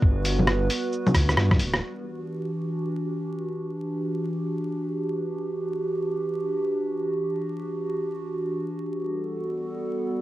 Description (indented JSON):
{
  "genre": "future garage",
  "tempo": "free time",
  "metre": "none",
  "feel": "none",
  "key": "E minor",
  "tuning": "A4 = 440 Hz",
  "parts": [
    { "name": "warbly tape-like pad", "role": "sustained chords", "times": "0.0-10.2 s", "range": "E3 to B4", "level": "-27 LUFS", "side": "right 1 dB", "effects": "chorus, built-in reverb, sidechain pumping, cassette tape" },
    { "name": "dark detuned saw bass", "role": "bass", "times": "0.0-1.8 s", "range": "D1 to G2", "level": "-24 LUFS", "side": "equal", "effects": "sidechain pumping" },
    { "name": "electronic kick drum", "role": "drums", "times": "0.0-1.6 s", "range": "none", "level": "-21 LUFS", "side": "equal", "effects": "cassette tape" },
    { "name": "lo-fi sampler-style drum kit", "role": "drums", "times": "0.2-1.8 s", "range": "bongos, hi-hat, rim click, shaker", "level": "-23 LUFS", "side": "left 1 dB", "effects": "cassette tape" }
  ],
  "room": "moderate studio ambience, RT60 0.5 s",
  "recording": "home recording on cassette, vinyl crackle",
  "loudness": "-25 LUFS",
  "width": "side -15 dB against mid",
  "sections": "0.0-1.8 A section; 1.8-10.2 B section",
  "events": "drum fill 1.1-1.8; band accent 1.7",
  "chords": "0.0 Gmaj7; 1.8 Em9; 9.0 Gmaj9"
}